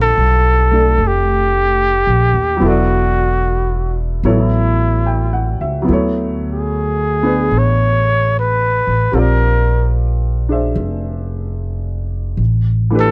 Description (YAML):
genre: jazz ballad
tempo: 74 BPM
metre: 4/4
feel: swing 67% on 8ths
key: unclear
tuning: A4 = 444 Hz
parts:
  - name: breathy trumpet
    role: melody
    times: 0.0-13.1 s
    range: E4 to C#5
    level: -19 LUFS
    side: equal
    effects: none
  - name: clear upright piano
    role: accompaniment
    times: 0.0-13.1 s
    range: D3 to G5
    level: -22 LUFS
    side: equal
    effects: none
  - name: upright bass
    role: bass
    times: 0.0-13.1 s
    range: E1 to D#2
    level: -18 LUFS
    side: equal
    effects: none
room: little or no reverb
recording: dry, close 1970s-style studio recording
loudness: -16 LUFS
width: mono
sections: 0.0-13.1 A section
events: none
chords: 0.0 Bbmaj7; 2.6 E5; 4.2 A69; 5.9 Dmaj9#11; 9.1 Bb7#11; 12.4 A5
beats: 0.18 0.99 1.80 | 2.62 3.43 4.25 5.07 | 5.88 6.70 7.52 8.33 | 9.15 9.96 10.78 11.59 | 12.40